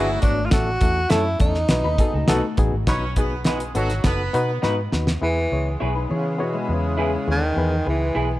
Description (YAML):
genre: uptempo 1960s-style soul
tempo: 102 BPM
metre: 4/4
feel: straight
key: E major from 5.2 s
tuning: A4 = 440 Hz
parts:
  - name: breathy tenor saxophone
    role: melody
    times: 0.0-8.4 s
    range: B2 to F#4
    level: -24 LUFS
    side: equal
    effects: none
  - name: warm horn section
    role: second line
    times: 0.0-8.4 s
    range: F#3 to C#5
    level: -31 LUFS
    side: right 1 dB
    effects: none
  - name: barky reed electric piano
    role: accompaniment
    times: 0.0-8.4 s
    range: A2 to C#5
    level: -26 LUFS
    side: left 2 dB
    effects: overdrive, fast tremolo
  - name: clean electric guitar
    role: riff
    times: 0.0-7.4 s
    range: G#3 to C#5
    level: -31 LUFS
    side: left 6 dB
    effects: analog chorus
  - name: electric guitar through a small old amp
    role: stabs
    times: 0.0-8.3 s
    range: D#4 to C#5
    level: -30 LUFS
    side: right 2 dB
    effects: wide subtle chorus
  - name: vintage muted fingered electric bass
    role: bass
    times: 0.0-8.4 s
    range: F#1 to E3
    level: -24 LUFS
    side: equal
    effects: none
  - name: cloth-damped thuddy drum kit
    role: drums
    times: 0.2-5.2 s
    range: hi-hat, kick drum, snare drum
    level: -21 LUFS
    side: equal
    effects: none
room: light reverb, studio reverb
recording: dark, warm production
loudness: -19 LUFS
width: side -16 dB against mid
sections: 0.0-2.9 A section; 2.9-5.2 B section; 5.2-8.4 C section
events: drum fill 4.6-5.2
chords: 0.0 Bm; 0.5 A; 1.7 B; 5.2 E